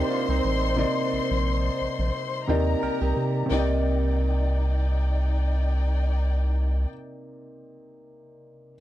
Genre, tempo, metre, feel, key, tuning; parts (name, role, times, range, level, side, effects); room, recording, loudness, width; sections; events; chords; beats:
lush 1970s-style soul; 88 BPM; 4/4; swing 54% on 16ths; C minor; A4 = 442 Hz
warm symphonic string section; second line; 0.0-6.9 s; Eb4 to C6; -31 LUFS; left 4 dB
warm concert grand piano; accompaniment; 0.0-8.8 s; C3 to D5; -29 LUFS; right 1 dB
direct-recorded clean electric guitar; riff; 0.0-3.5 s; C4 to Bb4; -31 LUFS; right 11 dB
rubbery square bass; bass; 0.0-6.9 s; A1 to C3; -23 LUFS; equal
small celesta; texture; 2.5-6.9 s; G4; -38 LUFS; left 6 dB
little or no reverb; dry, close 1970s-style studio recording; -22 LUFS; side -14 dB against mid
0.0-3.5 A section; 3.5-6.2 B section
0.0 Cm9
0.10 | 0.78 1.46 2.15 2.83 | 3.51 4.19 4.87 5.55